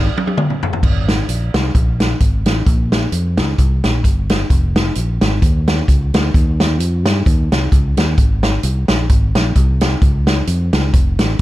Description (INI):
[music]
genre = uptempo gospel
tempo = 131 BPM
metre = 4/4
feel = swing 56% on 8ths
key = Ab major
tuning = A4 = 438 Hz
[part]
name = fingered electric bass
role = bass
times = 0.0-11.4 s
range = F1 to G2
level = -17 LUFS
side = equal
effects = none
[part]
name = swinging big-band drum kit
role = drums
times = 0.2-11.4 s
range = crash cymbal, hi-hat, kick drum, snare drum, toms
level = -14 LUFS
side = equal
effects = none
[sound]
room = little or no reverb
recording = none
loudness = -13 LUFS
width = side -16 dB against mid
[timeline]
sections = 0.8-11.4 A section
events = drum fill 0.0-0.8; band accent 0.0-0.8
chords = none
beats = 0.37 | 0.83 1.29 1.75 2.21 | 2.67 3.12 3.58 4.04 | 4.50 4.96 5.42 5.88 | 6.34 6.80 7.26 7.72 | 8.18 8.64 9.10 9.56 | 10.02 10.48 10.94 11.39